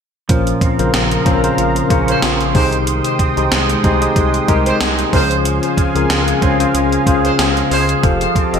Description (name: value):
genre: 1980s-style pop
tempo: 93 BPM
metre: 4/4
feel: swing 55% on 16ths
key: Bb dorian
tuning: A4 = 440 Hz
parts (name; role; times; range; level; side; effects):
- tine electric piano; accompaniment; 0.3-8.6 s; Bb2 to Eb5; -17 LUFS; left 4 dB; medium stereo tremolo
- warm analog pad; sustained chords; 0.6-8.6 s; Ab3 to Eb6; -21 LUFS; right 2 dB; chorus
- electric guitar at the edge of break-up; riff; 0.3-8.6 s; Eb3 to Ab4; -22 LUFS; right 5 dB; ensemble chorus, ping-pong delay
- rubbery square bass; bass; 0.3-8.6 s; F1 to Db2; -21 LUFS; right 1 dB; none
- gated 80s digital drum machine; drums; 0.3-8.6 s; hi-hat, kick drum, snare drum; -17 LUFS; right 1 dB; gated reverb, gated reverb snare
- mellow horn section; stabs; 2.1-7.9 s; F3 to C5; -23 LUFS; right 2 dB; ping-pong delay
room: moderate plate reverb, RT60 2.4 s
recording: bright 1980s-style digital production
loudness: -12 LUFS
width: side -7 dB against mid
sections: 0.3-8.6 A section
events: none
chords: 0.3 Bbmadd9; 2.6 Abmaj7/C; 5.1 Dbmaj7; 8.0 Fadd9